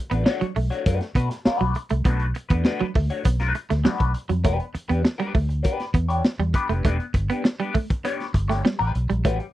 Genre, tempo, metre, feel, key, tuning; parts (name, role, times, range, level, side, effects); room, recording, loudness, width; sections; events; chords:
funk; 100 BPM; 4/4; straight; E dorian; A4 = 440 Hz
clean electric guitar; accompaniment; 0.1-9.4 s; G3 to C#5; -27 LUFS; left 4 dB; wah, phaser
electric guitar at the edge of break-up; riff; 0.1-9.3 s; F#3 to B3; -27 LUFS; right 6 dB; tremolo
vintage muted fingered electric bass; bass; 0.1-9.4 s; E1 to B2; -23 LUFS; equal
crunchy breakbeat drum kit; drums; 0.1-9.5 s; hi-hat, kick drum, snare drum; -21 LUFS; equal
little or no reverb; dry, close 1970s-style studio recording; -20 LUFS; side -15 dB against mid
0.0-4.4 A section; 4.4-9.5 B section
0.0 Bm7; 4.4 Em7